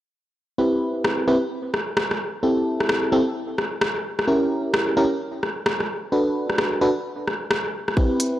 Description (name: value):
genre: UK garage, two-step garage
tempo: 130 BPM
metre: 4/4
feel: swing 62% on 16ths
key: unclear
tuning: A4 = 440 Hz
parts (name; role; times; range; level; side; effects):
- FM electric piano; stabs; 0.6-8.4 s; C4 to B4; -21 LUFS; equal; chorus, low-pass filter, analog delay
- garage drum kit; drums; 1.0-8.3 s; hi-hat, rim click; -23 LUFS; equal; none
- electronic kick drum; drums; 8.0-8.1 s; none; -19 LUFS; equal; none
room: moderate lush hall reverb, RT60 2.0 s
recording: dry, gritty hardware recording, transformer saturation, cassette tape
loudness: -20 LUFS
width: side -14 dB against mid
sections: 0.6-8.4 A section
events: none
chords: 0.6 Cmaj7; 2.4 C6; 4.0 C#dim7; 5.9 Bm7